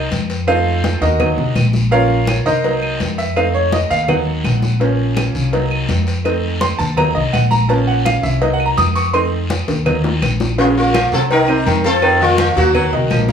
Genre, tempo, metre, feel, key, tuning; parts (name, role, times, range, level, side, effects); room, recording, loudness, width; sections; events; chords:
latin, salsa; 166 BPM; 4/4; straight; Bb harmonic minor; A4 = 442 Hz
bright concert grand piano; accompaniment; 0.0-13.3 s; C3 to Eb6; -18 LUFS; right 3 dB
upright bass; bass; 0.0-13.3 s; Bb1 to F2; -18 LUFS; left 1 dB
congas; percussion; 0.1-13.3 s; -23 LUFS; left 3 dB
cowbell and bongos; percussion; 0.1-13.3 s; -24 LUFS; left 3 dB
guiro; percussion; 0.1-13.3 s; -29 LUFS; left 2 dB
claves; percussion; 0.5-13.3 s; -27 LUFS; right 3 dB
sitar; melody; 10.6-13.3 s; A3 to Bb4; -15 LUFS; left 2 dB
clear baritone saxophone; second line; 10.6-13.3 s; Db3 to Gb3; -21 LUFS; right 2 dB
moderate studio reverb, RT60 0.6 s; -13 LUFS; side -7 dB against mid
0.0-10.6 A section; 10.6-13.3 B section
grand piano solo 0.0-10.6; drum fill 9.7-10.6
0.5 F7; 1.2 Ebm; 1.9 Bbm; 2.6 Cm7b5; 3.4 F7; 4.1 Ebm; 4.8 Bbm; 5.5 Cm7b5; 6.3 F7; 7.0 Ebm; 7.7 Bbm; 8.4 Cm7b5; 9.1 F7; 9.9 Ebm; 10.6 Bbm; 11.3 Cm7b5; 12.0 F7; 12.8 Ebm